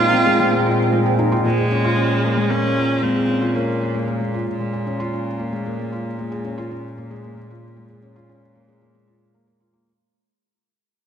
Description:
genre	piano and strings electronica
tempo	114 BPM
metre	4/4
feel	straight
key	unclear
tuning	A4 = 435 Hz
part	rich viola	melody	0.0-4.1 s	Ab3 to F4	-20 LUFS	right 2 dB	tape echo
part	granular cloud pad	sustained chords	0.0-1.4 s	F4 to G5	-26 LUFS	right 4 dB	built-in reverb
part	felt-muted upright piano	riff	0.0-9.9 s	Ab3 to Bb4	-23 LUFS	left 2 dB	tape echo
part	rich chamber cello section	bass	0.0-9.8 s	Bb2	-24 LUFS	equal	none
room	wet concert hall reverb, RT60 2.1 s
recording	dark, warm production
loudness	-18 LUFS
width	side -8 dB against mid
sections	0.0-1.4 A section; 1.4-9.9 B section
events	drop 0.0-1.4; fade-out 1.4-9.9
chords	0.0 Ab6/Bb; 1.4 Bbm7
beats	0.39 0.92 | 1.45 1.97 2.50 3.02 | 3.55 4.08 4.60 5.13 | 5.66 6.18 6.71 7.23 | 7.76 8.29 8.81 9.34

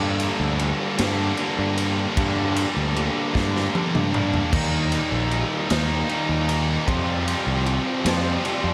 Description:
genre	quiet-loud alternative rock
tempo	51 BPM (dotted quarters)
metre	6/8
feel	straight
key	G minor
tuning	A4 = 439 Hz
part	distorted electric guitar	riff	0.0-8.7 s	G2 to F4	-30 LUFS	equal	overdrive
part	heavy high-gain guitar	riff	0.0-8.7 s	F2 to Eb4	-32 LUFS	equal	distortion
part	thick fuzz guitar	riff	0.0-8.7 s	G2 to F4	-31 LUFS	equal	distortion
part	growling fingered electric bass	bass	0.0-8.7 s	Bb1 to G2	-27 LUFS	equal	overdrive
part	raw garage drum kit	drums	0.2-8.6 s	crash cymbal, kick drum, ride cymbal, snare drum, toms	-29 LUFS	equal	none
room	moderate lush hall reverb, RT60 2.5 s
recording	big arena sound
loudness	-23 LUFS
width	mono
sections	0.0-8.7 A section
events	drum fill 3.4-4.5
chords	0.0 Gm; 4.5 Eb; 6.9 Fsus2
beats	0.99 | 2.17 3.35 | 4.53 5.70 | 6.88 8.05

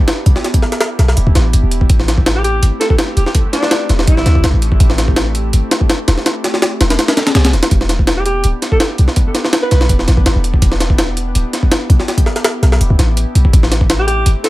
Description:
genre	drum and bass, jungle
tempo	165 BPM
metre	4/4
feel	straight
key	E minor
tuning	A4 = 440 Hz
part	warbly tape-like pad	sustained chords	0.0-14.5 s	A3 to G4	-24 LUFS	equal	chorus, built-in reverb
part	jungle sampler-style drum kit	drums	0.1-14.5 s	hi-hat, kick drum, snare drum	-13 LUFS	equal	overdrive, small room ambience
part	warm 808-style bass	bass	0.3-14.3 s	D1 to D2	-13 LUFS	equal	none
part	breathy alto saxophone	melody	2.4-4.6, 8.2-10.0, 14.0-14.5 s	D4 to B4	-20 LUFS	equal	dub echo
room	little or no reverb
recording	none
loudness	-11 LUFS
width	side -17 dB against mid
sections	0.0-14.5 A section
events	none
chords	0.0 Em7; 1.9 Am7; 7.7 Em7; 13.5 Am7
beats	0.08 | 0.44 0.80 1.17 1.53 | 1.89 2.26 2.62 2.98 | 3.35 3.71 4.08 4.44 | 4.80 5.17 5.53 5.89 | 6.26 6.62 6.99 7.35 | 7.71 8.08 8.44 8.80 | 9.17 9.53 9.89 10.26 | 10.62 10.98 11.35 11.71 | 12.08 12.44 12.80 13.17 | 13.53 13.89 14.26

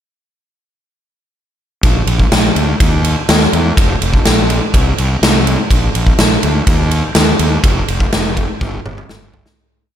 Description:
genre	quiet-loud alternative rock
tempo	124 BPM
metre	4/4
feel	straight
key	unclear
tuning	A4 = 440 Hz
part	fuzz fingered electric bass	bass	1.8-9.4 s	F1 to E2	-15 LUFS	equal	overdrive
part	big rock drum kit	drums	1.8-9.6 s	kick drum, ride cymbal, snare drum, toms	-12 LUFS	equal	none
room	light reverb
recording	none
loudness	-11 LUFS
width	side -10 dB against mid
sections	1.8-9.6 pre-chorus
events	fade-out 7.6-9.6; drum fill 8.6-9.6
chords	none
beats	| 1.83 2.32 2.80 3.29 | 3.77 4.25 4.74 5.22 | 5.71 6.19 6.67 7.16 | 7.64 8.12 8.61 9.09

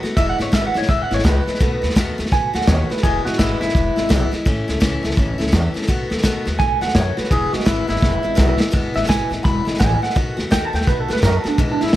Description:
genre	rockabilly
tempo	168 BPM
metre	4/4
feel	swing 63% on 8ths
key	E major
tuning	A4 = 440 Hz
part	picked steel-string acoustic guitar	accompaniment	0.0-11.9 s	E2 to F#4	-24 LUFS	left 2 dB	none
part	upright bass	bass	0.0-12.0 s	E1 to F#2	-22 LUFS	equal	none
part	vintage drum kit	drums	0.0-12.0 s	hi-hat, kick drum, snare drum	-19 LUFS	equal	none
part	electric guitar through a small old amp	melody	0.2-4.3, 6.6-12.0 s	D4 to B5	-22 LUFS	right 1 dB	wide subtle chorus, analog delay
room	light reverb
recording	none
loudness	-16 LUFS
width	side -14 dB against mid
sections	0.0-8.7 A section; 8.7-12.0 B section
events	drum fill 8.0-8.7; clean electric guitar solo 8.7-12.0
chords	0.2 E; 1.6 B7; 3.0 E; 4.5 A; 5.9 B7; 7.3 E; 10.2 B7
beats	| 0.17 0.53 0.89 1.24 | 1.60 1.96 2.32 2.67 | 3.03 3.39 3.75 4.10 | 4.46 4.82 5.17 5.53 | 5.89 6.24 6.60 6.96 | 7.31 7.67 8.02 8.38 | 8.73 9.09 9.45 9.80 | 10.16 10.52 10.87 11.23 | 11.59 11.94

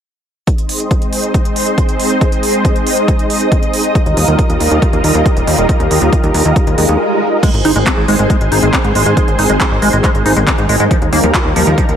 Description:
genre	uplifting trance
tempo	138 BPM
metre	4/4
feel	straight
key	Ab major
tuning	A4 = 440 Hz
part	analog string pad	sustained chords	0.5-12.0 s	Eb3 to Eb5	-15 LUFS	equal	ensemble chorus, sidechain pumping
part	electronic kick drum	drums	0.5-11.9 s	none	-14 LUFS	equal	overdrive
part	techno drum kit	drums	0.5-12.0 s	crash cymbal, handclaps, hi-hat	-19 LUFS	right 1 dB	none
part	plucky analog bass	bass	4.1-12.0 s	Eb1 to Ab2	-15 LUFS	equal	sidechain pumping
part	swell	sound effects	6.7-7.4 s	none	-20 LUFS	left 2 dB	none
part	liquid acid bass	arpeggios	7.4-11.8 s	F3 to F4	-17 LUFS	equal	phaser, wide subtle chorus, vintage 12-bit sampler grit, sidechain pumping, tape echo
room	light reverb, digital ambience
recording	none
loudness	-10 LUFS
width	side -8 dB against mid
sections	0.5-7.4 A section; 7.4-12.0 B section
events	swell 6.7-7.4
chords	0.5 Ab; 4.0 Ebadd9; 7.4 Ab; 10.9 Ebadd9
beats	| 0.47 0.91 1.34 1.78 | 2.21 2.65 3.08 3.52 | 3.95 4.39 4.82 5.26 | 5.69 6.13 6.56 7.00 | 7.43 7.87 8.30 8.73 | 9.17 9.61 10.04 10.47 | 10.91 11.34 11.78

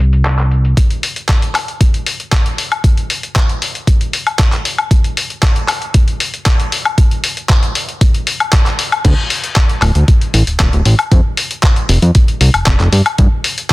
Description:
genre	nu-disco, nu disco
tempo	116 BPM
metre	4/4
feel	straight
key	D minor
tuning	A4 = 440 Hz
part	fat analog bass	bass	0.0-0.7, 9.0-13.3 s	D1 to G2	-10 LUFS	equal	none
part	dusty soul sampler-style drum kit	drums	0.0-13.7 s	crash cymbal, handclaps, hi-hat, woodblock	-16 LUFS	left 2 dB	low-pass filter on hats, low-pass filter on snare, low-pass filter on perc, low-pass filter on cymbals
part	electronic kick drum	drums	0.8-13.7 s	none	-12 LUFS	equal	none
room	digital ambience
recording	dense, heavily limited modern master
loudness	-11 LUFS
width	side -20 dB against mid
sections	0.8-9.0 A section; 9.0-13.7 B section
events	build-up 0.8-9.0; drop 9.0-13.7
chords	none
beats	0.26 | 0.77 1.29 1.81 2.32 | 2.84 3.36 3.88 4.39 | 4.91 5.43 5.95 6.46 | 6.98 7.50 8.01 8.53 | 9.05 9.57 10.08 10.60 | 11.12 11.63 12.15 12.67 | 13.19 13.70

